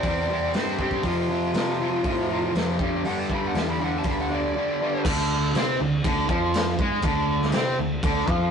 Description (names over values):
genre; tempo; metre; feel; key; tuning
blues rock power trio and southern rock; 120 BPM; 4/4; straight; unclear; A4 = 436 Hz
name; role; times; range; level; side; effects
smooth overdriven lead guitar; melody; 0.0-5.1 s; F4 to B5; -29 LUFS; right 1 dB; none
overdriven semi-hollow guitar; riff; 0.0-8.5 s; F2 to C4; -24 LUFS; equal; harmonic tremolo
fuzz fingered electric bass; bass; 0.0-8.5 s; D2 to C3; -30 LUFS; equal; overdrive
raw garage drum kit; drums; 0.0-8.4 s; crash cymbal, hi-hat, kick drum, snare drum; -28 LUFS; equal; none
room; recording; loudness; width
moderate stone room reverb, RT60 1.2 s; rough rehearsal-room recording, warm saturation, nothing above 10.6 kHz; -22 LUFS; side -7 dB against mid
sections
0.0-5.1 A section; 5.1-8.5 B section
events
none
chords
0.0 C; 1.1 F; 2.8 G5; 5.1 Csus24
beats
0.05 0.55 | 1.05 1.55 2.05 2.56 | 3.06 3.56 4.06 4.55 | 5.05 5.55 6.05 6.55 | 7.04 7.54 8.04